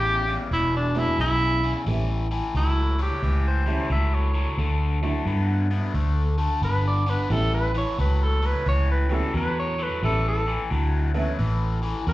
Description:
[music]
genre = electric blues shuffle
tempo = 88 BPM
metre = 4/4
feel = swing 65% on 8ths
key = A mixolydian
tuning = A4 = 440 Hz
[part]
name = warm tenor saxophone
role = melody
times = 0.0-12.1 s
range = D4 to E5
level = -26 LUFS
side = right 1 dB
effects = slapback echo
[part]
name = overdriven electric guitar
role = riff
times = 0.0-12.1 s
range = E2 to B3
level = -29 LUFS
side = left 4 dB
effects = phaser, slapback echo
[part]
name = vintage muted fingered electric bass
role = bass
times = 0.0-12.1 s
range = E1 to G2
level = -23 LUFS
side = equal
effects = none
[part]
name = honky-tonk upright piano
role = accompaniment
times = 0.9-11.4 s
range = E3 to F#4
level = -30 LUFS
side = right 4 dB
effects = slapback echo
[sound]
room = light reverb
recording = live gig heard through the venue's PA, club reverb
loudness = -21 LUFS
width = side -17 dB against mid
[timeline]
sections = 0.0-1.9 A section; 1.9-12.1 B section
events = tenor saxophone solo 0.0-1.9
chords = 0.0 E5; 1.9 A9; 4.6 Dadd9; 7.3 A9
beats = 0.51 1.19 | 1.87 2.55 3.23 3.91 | 4.59 5.26 5.95 6.62 | 7.30 7.99 8.67 9.35 | 10.03 10.71 11.39 12.07

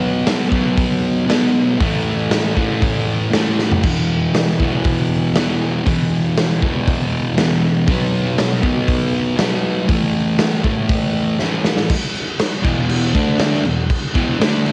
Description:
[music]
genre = garage rock duo or trio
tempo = 119 BPM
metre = 4/4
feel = straight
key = unclear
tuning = A4 = 440 Hz
[part]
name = fuzz guitar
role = riff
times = 0.0-14.7 s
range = E2 to D4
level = -19 LUFS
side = equal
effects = distortion, cassette tape
[part]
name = raw garage drum kit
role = drums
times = 0.3-14.7 s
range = crash cymbal, hi-hat, kick drum, snare drum, toms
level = -21 LUFS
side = equal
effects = cassette tape
[sound]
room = light reverb, small room ambience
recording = home recording on cassette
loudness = -17 LUFS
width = mono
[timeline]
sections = 0.0-11.9 A section; 11.9-14.7 B section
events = drum fill 3.6, 11.4-11.9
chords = 0.0 B5; 1.8 A5; 3.8 E5; 7.9 B5; 9.9 A5; 11.9 E5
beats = 0.27 0.78 1.29 | 1.80 2.31 2.82 3.33 | 3.84 4.34 4.85 5.36 | 5.87 6.37 6.88 7.38 | 7.89 8.39 8.89 9.39 | 9.90 10.40 10.90 11.40 | 11.90 12.40 12.90 13.40 | 13.91 14.41

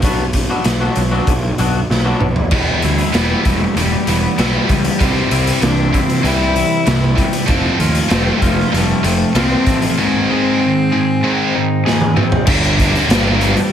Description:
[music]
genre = quiet-loud alternative rock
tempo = 96 BPM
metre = 4/4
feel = straight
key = unclear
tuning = A4 = 439 Hz
[part]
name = electric guitar at the edge of break-up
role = arpeggios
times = 0.0-12.5 s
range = E2 to Ab4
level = -22 LUFS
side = left 3 dB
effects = wide subtle chorus, plate reverb, analog delay
[part]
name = fuzz picked electric bass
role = bass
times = 0.0-13.5 s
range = E1 to Eb2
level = -19 LUFS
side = equal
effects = overdrive
[part]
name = raw garage drum kit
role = drums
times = 0.0-13.7 s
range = crash cymbal, hi-hat, kick drum, snare drum, toms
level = -17 LUFS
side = equal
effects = none
[part]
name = scooped high-gain guitar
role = riff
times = 2.5-13.6 s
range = G2 to D4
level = -17 LUFS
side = right 2 dB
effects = distortion
[part]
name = clear cello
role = melody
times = 3.1-13.7 s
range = G3 to E4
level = -20 LUFS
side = left 2 dB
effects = none
[sound]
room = light reverb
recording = heavily compressed radio sound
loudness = -12 LUFS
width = side -9 dB against mid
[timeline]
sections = 0.0-2.5 A section; 2.5-12.5 B section; 12.5-13.7 C section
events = drum fill 1.9-2.5, 11.9-12.5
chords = 0.0 Bm; 2.5 Em; 5.0 C; 7.5 F; 10.0 Ab; 12.5 Gm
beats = | 0.02 0.65 1.27 1.90 | 2.52 3.14 3.77 4.39 | 5.01 5.63 6.25 6.87 | 7.49 8.12 8.74 9.36 | 9.98 10.61 11.23 11.85 | 12.47 13.10

